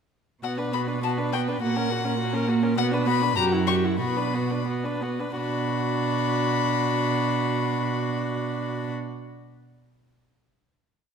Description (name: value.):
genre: quick classical-period movement for string quartet.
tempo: 85-105 BPM.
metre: 2/4.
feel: rubato.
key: B minor.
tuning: A4 = 440 Hz.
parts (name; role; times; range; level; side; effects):
warm violin; melody; 0.4-8.9 s; F#5 to C#6; -29 LUFS; left 11 dB; none.
warm violin; second line; 0.4-8.9 s; F#4 to B4; -32 LUFS; left 3 dB; none.
warm viola; accompaniment; 0.4-8.9 s; A#3 to F#4; -28 LUFS; right 3 dB; none.
rich cello; bass; 0.4-8.9 s; F#2 to B2; -28 LUFS; right 4 dB; none.
room: wet recital hall reverb, RT60 1.6 s.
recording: none.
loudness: -23 LUFS.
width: side -6 dB against mid.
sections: 0.4-5.4 A section; 5.4-8.2 final chord.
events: slowing down 2.2-5.4.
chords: 0.4 Bm; 1.6 F#/A#; 2.8 Bm; 3.4 F#7(no3); 4.0 Bm.